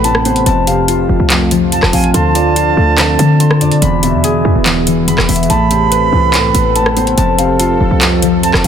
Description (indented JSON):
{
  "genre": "hip hop, trap",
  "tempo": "143 BPM",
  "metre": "4/4",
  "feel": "half-time",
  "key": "unclear",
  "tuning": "A4 = 444 Hz",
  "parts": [
    { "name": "reedy silver concert flute", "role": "second line", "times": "0.0-8.7 s", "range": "G#5 to B5", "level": "-18 LUFS", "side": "right 10 dB", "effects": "tape echo" },
    { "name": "dark concert grand piano", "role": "accompaniment", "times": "0.0-8.7 s", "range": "E2 to D4", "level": "-16 LUFS", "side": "equal", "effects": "none" },
    { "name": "dark analog pad", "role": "sustained chords", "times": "0.0-8.7 s", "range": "C3 to B4", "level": "-20 LUFS", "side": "right 5 dB", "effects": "chorus" },
    { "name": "concert harp", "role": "arpeggios", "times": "0.0-8.7 s", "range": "D3 to C6", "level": "-15 LUFS", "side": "left 5 dB", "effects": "tape echo" },
    { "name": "short 808-style bass", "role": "bass", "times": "0.0-8.7 s", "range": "E1 to D3", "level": "-16 LUFS", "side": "equal", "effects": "none" },
    { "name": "trap drum kit", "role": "drums", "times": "0.0-8.7 s", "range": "handclaps, hi-hat, rim click", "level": "-16 LUFS", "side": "equal", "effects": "none" }
  ],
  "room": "small room ambience",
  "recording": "dense, heavily limited modern master",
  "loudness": "-9 LUFS",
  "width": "side -8 dB against mid",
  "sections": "0.0-8.7 A section",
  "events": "none",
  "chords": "0.5 F; 2.1 Dm7; 3.8 E; 5.5 Amadd9; 7.2 F"
}